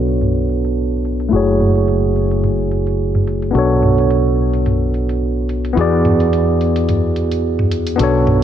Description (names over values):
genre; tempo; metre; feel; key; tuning
sunset chillout; 108 BPM; 4/4; swing 55% on 16ths; B dorian; A4 = 442 Hz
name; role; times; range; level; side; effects
mellow tine electric piano; accompaniment; 0.0-8.4 s; A3 to D5; -16 LUFS; moving between left 4 dB and right 5 dB; overdrive, auto-pan, digital delay
mellow fretless electric bass; bass; 0.0-8.4 s; F#1 to E2; -18 LUFS; equal; none
smooth R&B drum kit; drums; 0.1-8.4 s; hi-hat, toms; -21 LUFS; equal; small room reverb
room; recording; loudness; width
light reverb; low-pass filter; -14 LUFS; side -10 dB against mid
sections
0.0-8.4 A section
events
filter sweep 0.0-8.4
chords
0.0 Bm7; 1.3 F#m7; 3.5 Bm7; 5.8 E9